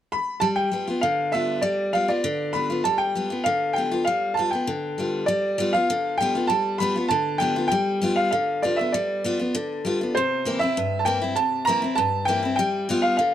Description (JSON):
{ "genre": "rock", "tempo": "197 BPM", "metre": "4/4", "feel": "straight", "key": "G mixolydian", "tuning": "A4 = 441 Hz", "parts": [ { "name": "bright upright piano", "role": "melody", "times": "0.1-13.3 s", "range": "C5 to B5", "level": "-23 LUFS", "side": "right 1 dB", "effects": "none" }, { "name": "picked steel-string acoustic guitar", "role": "accompaniment", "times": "0.4-13.3 s", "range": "G2 to F4", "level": "-25 LUFS", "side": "left 2 dB", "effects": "none" } ], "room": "light reverb", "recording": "none", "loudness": "-21 LUFS", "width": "side -10 dB against mid", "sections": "0.4-5.3 A section; 5.3-13.3 B section", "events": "none", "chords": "0.4 G7; 10.2 C7; 12.6 G7" }